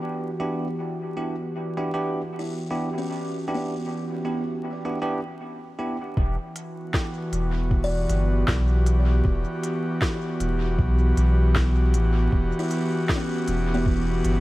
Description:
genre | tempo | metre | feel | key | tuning
ambient dub | 78 BPM | 4/4 | swing 57% on 16ths | E dorian | A4 = 439 Hz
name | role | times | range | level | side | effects
airy breathy pad | sustained chords | 0.0-14.4 s | E3 to G4 | -28 LUFS | equal | chorus
bell-like tine electric piano | stabs | 0.4-6.0 s | B3 to G4 | -31 LUFS | right 2 dB | wide subtle chorus, dub echo
buzzing kalimba | arpeggios | 2.4-14.4 s | B3 to D5 | -35 LUFS | left 2 dB | dub echo
soft dub sub bass | bass | 6.2-14.4 s | E1 to B1 | -21 LUFS | equal | none
electronic kick drum | drums | 6.2-14.0 s | none | -24 LUFS | equal | none
organic electronic drum kit | drums | 6.6-14.4 s | hi-hat, snare drum | -31 LUFS | equal | dub echo
room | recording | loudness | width
light reverb | echo-heavy mix, vinyl crackle | -22 LUFS | side -18 dB against mid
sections
0.0-6.2 A section; 6.2-14.4 B section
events
none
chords
0.0 Em7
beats
| 0.02 0.79 1.56 2.33 | 3.10 3.86 4.63 5.40 | 6.17 6.94 7.71 8.48 | 9.25 10.02 10.79 11.56 | 12.32 13.10 13.86

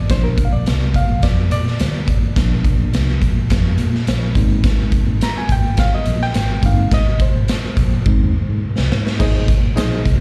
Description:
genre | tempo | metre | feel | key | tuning
uptempo 1960s-style soul | 105 BPM | 4/4 | straight | unclear | A4 = 443 Hz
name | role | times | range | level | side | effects
barky reed electric piano | accompaniment | 0.0-10.1 s | F3 to Bb5 | -26 LUFS | equal | overdrive, fast tremolo, slapback echo
vintage muted fingered electric bass | bass | 0.0-10.2 s | G1 to Bb2 | -21 LUFS | equal | none
raw garage drum kit | drums | 0.1-10.2 s | crash cymbal, hi-hat, kick drum, snare drum | -19 LUFS | equal | none
room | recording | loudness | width
little or no reverb | live gig heard through the venue's PA, club reverb | -17 LUFS | mono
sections
0.0-9.2 A section; 9.2-10.2 B section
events
reed electric piano solo 0.0-9.2; drum fill 8.1-9.2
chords
0.1 Bb; 4.4 Ab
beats
| 0.10 0.67 1.23 1.80 | 2.37 2.94 3.51 4.07 | 4.64 5.21 5.78 6.35 | 6.92 7.49 8.06 8.63 | 9.20 9.77

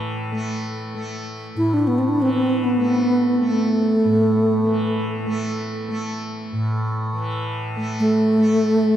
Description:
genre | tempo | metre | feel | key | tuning
world meditative, free-time meditation music | free time | none | none | unclear | A4 = 439 Hz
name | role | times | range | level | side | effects
tanpura | drone | 0.0-9.0 s | A2 to A3 | -25 LUFS | equal | none
breathy bass flute | melody | 1.6-9.0 s | A3 to E4 | -19 LUFS | equal | tape echo
room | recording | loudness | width
wet cathedral reverb, RT60 5.4 s | dark, warm production | -18 LUFS | side -10 dB against mid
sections
0.0-9.0 A section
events
none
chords
none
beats
free time

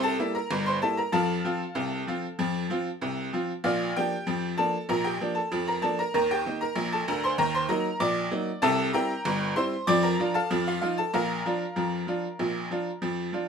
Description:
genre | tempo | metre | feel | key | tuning
ragtime piano | 96 BPM | 2/4 | straight | Bb major | A4 = 441 Hz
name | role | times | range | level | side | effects
tack piano | solo | 0.0-13.5 s | G1 to D6 | -25 LUFS | equal | none
room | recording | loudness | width
light reverb | minimal, uncompressed stereo recording | -25 LUFS | side -6 dB against mid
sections
0.0-13.5 A section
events
none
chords
0.0 C7; 1.1 F; 3.7 Bb; 6.1 Eb; 7.4 Ebm; 8.6 C7; 9.9 Bb/F; 10.5 F7; 11.1 Bb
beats
0.51 | 1.13 1.76 | 2.39 3.02 | 3.65 4.28 | 4.90 5.52 | 6.14 6.77 | 7.39 8.01 | 8.63 9.26 | 9.88 10.51 | 11.14 11.77 | 12.40 13.03

